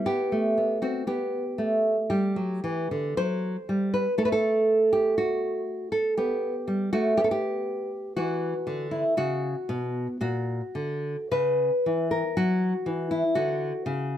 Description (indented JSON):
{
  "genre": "classical, baroque-style dance for nylon-string guitar",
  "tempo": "60 BPM",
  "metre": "4/4",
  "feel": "rubato",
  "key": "unclear",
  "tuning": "A4 = 440 Hz",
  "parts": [
    { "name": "nylon-string guitar", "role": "solo", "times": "0.0-14.2 s", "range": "A#2 to C5", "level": "-24 LUFS", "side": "equal", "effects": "none" }
  ],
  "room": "light reverb",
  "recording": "none",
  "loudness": "-24 LUFS",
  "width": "side -11 dB against mid",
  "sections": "0.0-14.2 A section",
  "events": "none",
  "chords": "0.1 G; 4.2 N.C.; 6.2 G; 8.2 E5; 10.2 F#/A#; 12.4 F#5",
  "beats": "| 0.08 1.08 2.10 3.20 | 4.21 5.19 6.18 7.19 | 8.18 9.18 10.21 11.31 | 12.36 13.36"
}